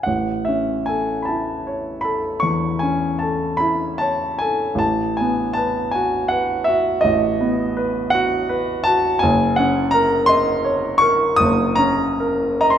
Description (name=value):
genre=classical, romantic nocturne for solo piano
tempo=46-57 BPM (dotted quarters)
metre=12/8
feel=rubato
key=A major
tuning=A4 = 440 Hz
part: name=warm grand piano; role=solo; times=0.0-12.8 s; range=Gb1 to Eb6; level=-17 LUFS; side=equal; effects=none
room=wet recital hall reverb, RT60 1.4 s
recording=none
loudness=-17 LUFS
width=side -9 dB against mid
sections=0.1-12.8 A section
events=none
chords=0.1 A; 4.8 B7/A; 9.2 Ebm7/Gb